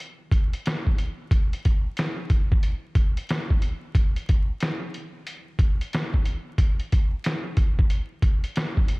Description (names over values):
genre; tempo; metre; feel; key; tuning
hip hop; 91 BPM; 4/4; swing 64% on 16ths; none; none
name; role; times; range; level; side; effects
trip hop sampler-style drum kit; drums; 0.0-9.0 s; hi-hat, kick drum, snare drum; -21 LUFS; equal; vintage 12-bit sampler grit
room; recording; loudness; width
little or no reverb; vinyl crackle; -22 LUFS; side -26 dB against mid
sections
0.0-9.0 A section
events
none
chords
none